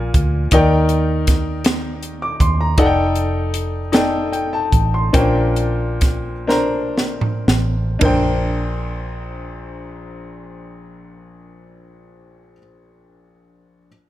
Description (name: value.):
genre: slow gospel.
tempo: 36-53 BPM (dotted quarters).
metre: 6/8.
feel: straight.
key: Bb major.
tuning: A4 = 440 Hz.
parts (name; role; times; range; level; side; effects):
clear concert grand piano; accompaniment; 0.0-13.9 s; Bb1 to D6; -20 LUFS; left 2 dB; none.
vintage muted fingered electric bass; bass; 0.0-12.6 s; F1 to Eb2; -21 LUFS; right 1 dB; none.
crisp fusion drum kit; drums; 0.1-8.3 s; hi-hat, kick drum, ride cymbal, snare drum, toms; -18 LUFS; right 1 dB; none.
room: light reverb, small room ambience.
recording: none.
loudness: -15 LUFS.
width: side -14 dB against mid.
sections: 0.0-8.0 A section; 8.0-11.4 B section.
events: slowing down 2.8-8.0; drum fill 6.5-8.0.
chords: 0.0 Bb7; 0.5 Ebmaj7; 2.8 F13; 5.1 Bb69.